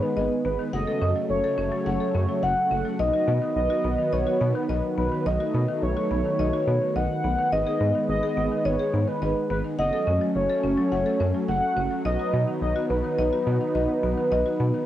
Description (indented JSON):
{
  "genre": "pop",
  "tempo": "106 BPM",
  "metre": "4/4",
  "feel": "straight",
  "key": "B mixolydian",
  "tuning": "A4 = 439 Hz",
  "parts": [
    { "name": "warm velvety synth lead", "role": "melody", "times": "0.0-14.9 s", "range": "B4 to F#5", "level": "-26 LUFS", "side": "equal", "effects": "chorus, cassette tape" },
    { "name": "mellow synth brass", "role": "accompaniment", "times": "0.0-14.9 s", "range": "B3 to B4", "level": "-32 LUFS", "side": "right 7 dB", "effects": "chorus, cassette tape" },
    { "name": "warm analog pad", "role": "sustained chords", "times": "0.0-14.9 s", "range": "C#3 to D#4", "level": "-30 LUFS", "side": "equal", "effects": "chorus, cassette tape" },
    { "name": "buzzing marimba with medium hard mallets", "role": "arpeggios", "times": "0.0-14.9 s", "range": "D#3 to F#5", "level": "-31 LUFS", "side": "left 6 dB", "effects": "cassette tape, plate reverb, analog delay" },
    { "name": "rubbery square bass", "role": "bass", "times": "0.2-14.7 s", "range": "F#1 to B2", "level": "-27 LUFS", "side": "equal", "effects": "none" }
  ],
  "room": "moderate booth ambience, RT60 0.2 s",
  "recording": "home recording on cassette",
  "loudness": "-22 LUFS",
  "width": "side -12 dB against mid",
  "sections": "0.0-14.9 A section",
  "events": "none",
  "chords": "0.0 G#m; 0.7 F#m; 3.0 B; 7.5 G#m; 9.8 F#m; 12.1 B"
}